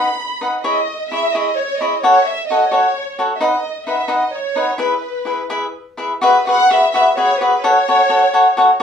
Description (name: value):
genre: mexican folk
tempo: 86 BPM (dotted quarters)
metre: 6/8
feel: rubato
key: E major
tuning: A4 = 441 Hz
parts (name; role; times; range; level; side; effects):
- dark symphonic violin section; melody; 0.0-8.8 s; B4 to B5; -19 LUFS; right 1 dB; plate reverb
- cavaquinho; accompaniment; 0.0-8.8 s; D#4 to F#5; -14 LUFS; left 1 dB; none
room: wet studio reverb, RT60 0.5 s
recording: small room ambience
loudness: -13 LUFS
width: side -7 dB against mid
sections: 0.0-6.2 A section; 6.2-8.8 B section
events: none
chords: 0.0 B; 0.6 C#m; 2.0 F#m; 3.4 B; 4.8 E; 6.2 Eadd9; 7.6 F#m